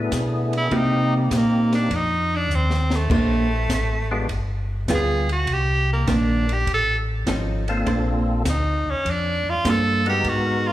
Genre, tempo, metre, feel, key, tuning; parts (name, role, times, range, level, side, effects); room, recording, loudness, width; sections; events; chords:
soul jazz organ trio; 101 BPM; 4/4; swing 69% on 8ths; Bb major; A4 = 436 Hz
percussive tonewheel organ; melody; 0.0-10.7 s; Ab3 to Bb4; -26 LUFS; left 2 dB; slow rotary speaker, chorus vibrato
mellow tonewheel organ; bass; 0.0-10.7 s; G1 to C3; -23 LUFS; equal; slow rotary speaker
compact cocktail drum kit; drums; 0.1-10.4 s; crash cymbal, hi-hat, kick drum, ride cymbal, snare drum; -28 LUFS; equal
edgy tenor saxophone; melody; 0.6-10.7 s; G3 to A4; -23 LUFS; right 1 dB; slapback echo
vintage hollow-body jazz guitar; accompaniment; 0.7-10.0 s; Eb3 to C5; -24 LUFS; right 2 dB; slapback echo
small room ambience; live gig heard through the venue's PA, club reverb; -19 LUFS; side -14 dB against mid
0.0-10.7 A section
tenor saxophone solo 0.0-10.7; drum fill 2.5-3.1
0.0 D5; 0.7 Cm7; 1.9 F7(no3); 3.1 Bbmaj9; 4.3 G7b9; 5.5 Cm9; 6.7 F7alt; 7.9 Bbmaj9